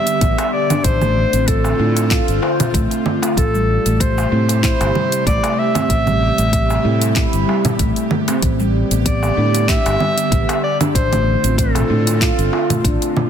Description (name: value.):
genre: organic downtempo.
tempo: 95 BPM.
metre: 4/4.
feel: swing 54% on 16ths.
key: A minor.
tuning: A4 = 440 Hz.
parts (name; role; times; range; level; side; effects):
warm clarinet; melody; 0.0-12.8 s; A4 to E5; -21 LUFS; left 1 dB; ping-pong delay.
airy breathy pad; sustained chords; 0.0-13.3 s; C3 to G4; -24 LUFS; left 1 dB; chorus, sidechain pumping.
deep house drum kit; drums; 0.1-13.3 s; cabasa, congas, handclaps, hi-hat; -22 LUFS; right 3 dB; none.
handpan; arpeggios; 0.2-13.0 s; G3 to C5; -21 LUFS; right 1 dB; ping-pong delay.
fretless electric bass; bass; 0.2-13.0 s; G1 to A2; -18 LUFS; equal; wide subtle chorus.
electronic kick drum; drums; 0.2-13.0 s; none; -19 LUFS; equal; none.
darbuka; percussion; 0.4-13.3 s; none; -26 LUFS; left 2 dB; none.
room: light reverb, small room ambience.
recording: dense, heavily limited modern master.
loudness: -14 LUFS.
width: side -8 dB against mid.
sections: 0.0-13.3 A section.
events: none.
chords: 0.0 G/A; 0.8 Dm7/A; 3.4 Am7; 8.4 G/A; 11.0 Dm7/A.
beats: 0.21 | 0.85 1.48 2.11 2.74 | 3.37 4.00 4.64 5.27 | 5.90 6.53 7.16 7.79 | 8.43 9.06 9.69 10.32 | 10.95 11.58 12.21 12.85.